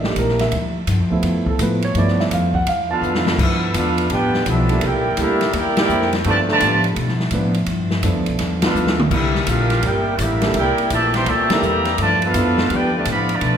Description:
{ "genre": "jazz, big band swing", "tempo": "168 BPM", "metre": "4/4", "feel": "swing 65% on 8ths", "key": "G mixolydian, G major from 3.4 s", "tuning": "A4 = 440 Hz", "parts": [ { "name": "picked steel-string acoustic guitar", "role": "accompaniment", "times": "0.0-13.6 s", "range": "G2 to A4", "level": "-26 LUFS", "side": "left 2 dB", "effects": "none" }, { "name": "warm grand piano", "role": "accompaniment", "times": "0.0-12.6 s", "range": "E3 to A5", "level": "-23 LUFS", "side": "right 3 dB", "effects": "none" }, { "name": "upright bass", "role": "bass", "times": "0.0-13.6 s", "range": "G1 to B2", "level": "-23 LUFS", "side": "left 1 dB", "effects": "none" }, { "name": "swinging big-band drum kit", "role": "drums", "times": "0.0-13.5 s", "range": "crash cymbal, hi-hat, kick drum, ride cymbal, snare drum, toms", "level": "-23 LUFS", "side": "left 1 dB", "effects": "none" }, { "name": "clear trumpet section", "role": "melody", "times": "2.9-13.6 s", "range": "D4 to C6", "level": "-20 LUFS", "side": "right 1 dB", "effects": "none" }, { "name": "bright trombone section", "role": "second line", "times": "2.9-13.6 s", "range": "Bb2 to G4", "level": "-22 LUFS", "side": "right 1 dB", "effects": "none" } ], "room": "wet recital hall reverb, RT60 1.7 s", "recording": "recorded in a church or concert hall", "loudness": "-16 LUFS", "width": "side -8 dB against mid", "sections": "0.0-3.4 A section; 3.4-13.6 B section", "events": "grand piano solo 0.0-3.4; drum fill 3.0-3.4, 8.8-9.1; band accent 5.7, 8.6, 11.4", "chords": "0.0 C13; 0.5 G13; 4.8 C13; 6.2 G13; 9.1 C13; 12.0 G13" }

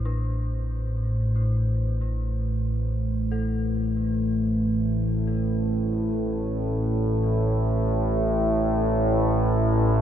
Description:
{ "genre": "dark ambient drone", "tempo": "free time", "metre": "none", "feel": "none", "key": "A minor", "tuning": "A4 = 440 Hz", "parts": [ { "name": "dark analog pad", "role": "sustained chords", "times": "0.0-10.0 s", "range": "A3 to D5", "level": "-36 LUFS", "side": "right 1 dB", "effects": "chorus" }, { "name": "dark detuned synth bell", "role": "arpeggios", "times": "0.0-10.0 s", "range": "D4 to A4", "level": "-44 LUFS", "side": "left 3 dB", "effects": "chorus, tape echo" }, { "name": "analog drone", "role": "drone", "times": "0.0-10.0 s", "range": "A1 to A2", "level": "-22 LUFS", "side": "equal", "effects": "chorus" } ], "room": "moderate huge ambient reverb, RT60 8.7 s", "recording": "dreamy mix soaked in reverb, nothing above 8.0 kHz", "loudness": "-22 LUFS", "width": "side -10 dB against mid", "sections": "0.0-10.0 A section", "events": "fade-in on analog synth pad 0.0-10.0; fade-in on synth bell 0.0-10.0", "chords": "0.0 Amadd9" }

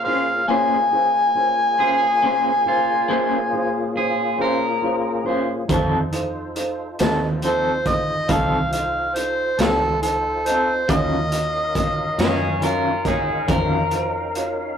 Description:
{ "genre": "slow blues", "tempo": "46 BPM (dotted quarters)", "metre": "12/8", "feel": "straight", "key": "Bb minor", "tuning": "A4 = 436 Hz", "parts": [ { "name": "overdriven harmonica", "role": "melody", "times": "0.0-12.6 s", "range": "C4 to Ab5", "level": "-20 LUFS", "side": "equal", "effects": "none" }, { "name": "electric guitar through a small old amp", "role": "accompaniment", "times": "0.0-13.8 s", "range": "Eb3 to C5", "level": "-24 LUFS", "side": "left 1 dB", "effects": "tremolo" }, { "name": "tonewheel organ", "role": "sustained chords", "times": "0.0-14.8 s", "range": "Bb2 to F5", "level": "-30 LUFS", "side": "left 1 dB", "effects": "slow rotary speaker, overdrive, chorus vibrato" }, { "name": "dark upright piano", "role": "accompaniment", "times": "0.1-14.7 s", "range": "Bb2 to Eb5", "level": "-28 LUFS", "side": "right 1 dB", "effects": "none" }, { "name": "electric guitar at the edge of break-up", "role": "second line", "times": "1.8-14.8 s", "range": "Eb4 to Db5", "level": "-24 LUFS", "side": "equal", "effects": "none" }, { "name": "vintage muted fingered electric bass", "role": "bass", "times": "5.7-14.7 s", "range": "C2 to Gb2", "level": "-30 LUFS", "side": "right 1 dB", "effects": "none" }, { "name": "raw garage drum kit", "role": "drums", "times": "5.7-14.6 s", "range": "hi-hat, kick drum, snare drum", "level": "-24 LUFS", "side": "equal", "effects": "none" } ], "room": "wet studio reverb, RT60 0.5 s", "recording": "rough rehearsal-room recording, tube saturation", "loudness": "-18 LUFS", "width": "side -8 dB against mid", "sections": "0.0-14.8 A section", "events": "none", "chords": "0.0 Bbm9; 5.7 F7; 10.9 Ebm9" }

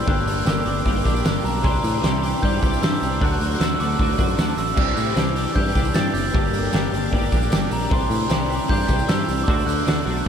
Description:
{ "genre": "indie rock", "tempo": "153 BPM", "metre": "4/4", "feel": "straight", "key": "C lydian", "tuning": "A4 = 441 Hz", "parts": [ { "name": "glockenspiel with rubber mallets", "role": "melody", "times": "0.0-10.3 s", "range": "Bb5 to A6", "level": "-26 LUFS", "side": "right 1 dB", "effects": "analog delay" }, { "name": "twelve-string electric guitar", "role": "riff", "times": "0.0-10.3 s", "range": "G2 to G4", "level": "-27 LUFS", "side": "left 9 dB", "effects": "ensemble chorus" }, { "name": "twelve-string electric guitar", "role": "riff", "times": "0.0-10.3 s", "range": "C3 to G4", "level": "-29 LUFS", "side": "right 10 dB", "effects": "ensemble chorus, analog delay" }, { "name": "picked electric bass", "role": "bass", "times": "0.1-10.3 s", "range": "F#1 to A2", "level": "-25 LUFS", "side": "equal", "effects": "none" }, { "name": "loose indie drum kit", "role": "drums", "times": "0.1-10.2 s", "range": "crash cymbal, hi-hat, kick drum, snare drum", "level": "-22 LUFS", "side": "equal", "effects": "none" }, { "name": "tambourine", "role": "percussion", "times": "0.3-10.2 s", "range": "none", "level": "-43 LUFS", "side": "right 8 dB", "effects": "none" } ], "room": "light reverb, small room ambience", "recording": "none", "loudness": "-18 LUFS", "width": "side -8 dB against mid", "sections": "0.0-10.3 A section", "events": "none", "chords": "0.1 Gm; 1.6 Cadd9; 3.2 D; 4.8 Cadd9; 6.3 Gm; 7.9 Cadd9; 9.5 D" }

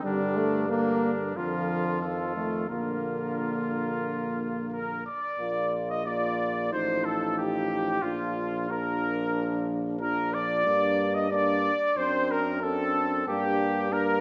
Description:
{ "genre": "classical, brass quintet", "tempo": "91 BPM", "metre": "4/4", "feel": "straight", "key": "Bb major", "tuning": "A4 = 440 Hz", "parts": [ { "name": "warm cornet", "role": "melody", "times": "0.0-14.2 s", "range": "F4 to Eb5", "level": "-33 LUFS", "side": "equal", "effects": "none" }, { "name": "clear trumpet", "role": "second line", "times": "0.0-14.2 s", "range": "D4 to Eb5", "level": "-34 LUFS", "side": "equal", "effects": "none" }, { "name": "clear French horn", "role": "accompaniment", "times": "0.0-14.2 s", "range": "F3 to F4", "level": "-34 LUFS", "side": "equal", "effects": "none" }, { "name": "clear trombone", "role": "accompaniment", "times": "0.0-14.2 s", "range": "D3 to C4", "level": "-38 LUFS", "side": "equal", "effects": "none" }, { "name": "clear bass trombone", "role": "bass", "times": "0.0-14.2 s", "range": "A1 to G2", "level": "-36 LUFS", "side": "equal", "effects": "none" } ], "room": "moderate recital hall reverb, RT60 1.3 s", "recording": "nothing above 7.8 kHz", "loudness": "-28 LUFS", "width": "mono", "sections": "0.0-5.4 A section; 5.4-14.2 B section", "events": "none", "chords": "0.0 Gm; 1.4 Bb/F; 2.0 F7; 2.7 Bb; 6.7 F7/A; 8.0 Bb; 10.7 Gm; 12.0 D7/F#; 13.3 Gm" }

